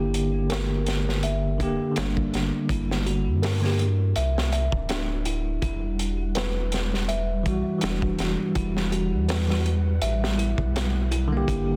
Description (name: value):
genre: trip hop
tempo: 82 BPM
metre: 4/4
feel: swing 55% on 16ths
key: E minor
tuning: A4 = 442 Hz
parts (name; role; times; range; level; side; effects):
- bell-like tine electric piano; accompaniment; 0.0-11.8 s; D3 to G4; -30 LUFS; equal; tremolo, tape echo
- music box; arpeggios; 0.0-11.8 s; D4 to E5; -35 LUFS; equal; vintage 12-bit sampler grit, low-pass filter, tape echo
- warm sub bass; bass; 0.0-11.8 s; D1 to G2; -28 LUFS; equal; none
- crunchy breakbeat drum kit; drums; 0.1-11.7 s; hi-hat, kick drum, snare drum; -32 LUFS; equal; vintage 12-bit sampler grit
- string machine, cellos; sustained chords; 5.6-11.8 s; G3 to F#5; -34 LUFS; equal; ensemble chorus
room: light reverb, small room ambience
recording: dense, heavily limited modern master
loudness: -25 LUFS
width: mono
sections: 0.0-11.8 A section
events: filter sweep on music box 0.0-11.8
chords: 0.0 Gm; 5.6 Emadd9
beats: 0.50 1.24 1.97 | 2.70 3.43 4.16 4.89 | 5.62 6.36 7.09 7.82 | 8.55 9.28 10.02 10.75 | 11.48